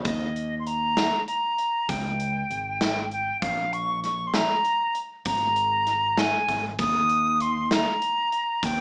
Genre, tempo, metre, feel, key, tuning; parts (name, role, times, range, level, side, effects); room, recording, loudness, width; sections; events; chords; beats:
progressive instrumental, band music in an uneven meter; 196 BPM (eighths); 11/8; straight; Eb mixolydian; A4 = 440 Hz
bright reedy silver concert flute; melody; 0.0-8.8 s; Eb5 to Eb6; -27 LUFS; equal
gated 80s drum kit; drums; 0.0-8.8 s; hi-hat, kick drum, snare drum; -30 LUFS; equal
fretless electric bass; bass; 0.1-8.8 s; Ab1 to Eb2; -34 LUFS; equal
moderate large studio reverb, RT60 1.1 s; band playing live in one room, small speaker sound; -25 LUFS; mono
0.1-8.8 A section
0.0 Eb5; 1.9 Db5; 3.4 Bbm; 5.3 Absus2; 6.8 Eb5
| 0.05 0.36 0.67 0.97 1.28 1.58 1.89 2.20 2.50 2.81 3.12 | 3.42 3.73 4.03 4.34 4.65 4.95 5.26 5.57 5.87 6.18 6.49 | 6.79 7.10 7.41 7.71 8.02 8.33 8.63